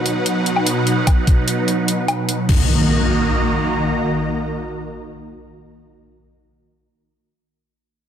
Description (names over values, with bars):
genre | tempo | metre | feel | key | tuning
heavy wobble dubstep | 148 BPM | 4/4 | half-time | Eb minor | A4 = 435 Hz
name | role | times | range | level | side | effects
supersaw pad | sustained chords | 0.0-5.8 s | B2 to Bb5 | -19 LUFS | right 1 dB | phaser, sidechain pumping
dubstep drum kit | drums | 0.1-2.6 s | crash cymbal, hi-hat, woodblock | -23 LUFS | left 2 dB | none
electronic kick drum | drums | 1.1-2.6 s | none | -14 LUFS | equal | none
impact | sound effects | 2.5-5.8 s | none | -22 LUFS | equal | none
room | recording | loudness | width
light reverb, digital ambience | none | -16 LUFS | side -9 dB against mid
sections
0.0-2.7 A section; 2.7-5.9 B section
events
none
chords
0.0 B; 2.5 Ebm